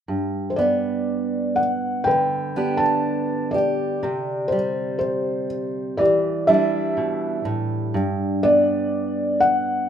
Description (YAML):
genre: folk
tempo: 61 BPM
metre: 4/4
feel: straight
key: G major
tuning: A4 = 440 Hz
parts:
  - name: fingerpicked steel-string acoustic guitar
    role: accompaniment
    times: 0.1-9.9 s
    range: G2 to G4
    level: -24 LUFS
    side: right 2 dB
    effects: none
  - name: felt-muted upright piano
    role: melody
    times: 0.5-9.9 s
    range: G4 to A5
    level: -21 LUFS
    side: left 1 dB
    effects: none
room: moderate large studio reverb, RT60 1.2 s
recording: minimal, uncompressed stereo recording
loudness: -19 LUFS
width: side -8 dB against mid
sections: 0.1-9.9 A section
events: none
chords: 0.1 G; 4.0 Cadd9; 8.0 G